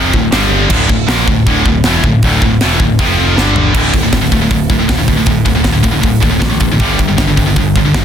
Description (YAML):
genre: heavy metal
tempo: 158 BPM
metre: 4/4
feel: straight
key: D minor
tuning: A4 = 443 Hz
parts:
  - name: scooped high-gain guitar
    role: riff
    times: 0.0-8.0 s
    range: D2 to Bb3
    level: -12 LUFS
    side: equal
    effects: distortion
  - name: growling picked electric bass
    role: bass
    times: 0.0-8.0 s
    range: D1 to Bb1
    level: -17 LUFS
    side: equal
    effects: overdrive
  - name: tight metal drum kit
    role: drums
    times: 0.1-8.0 s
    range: crash cymbal, hi-hat, kick drum, snare drum, toms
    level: -15 LUFS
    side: equal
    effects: none
room: little or no reverb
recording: dense, heavily limited modern master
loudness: -9 LUFS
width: side -8 dB against mid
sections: 0.0-3.8 A section; 3.8-8.0 B section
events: drum fill 3.4-3.8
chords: 0.3 G5; 0.7 D5; 3.0 F5; 3.4 G5; 3.8 D5; 6.8 G5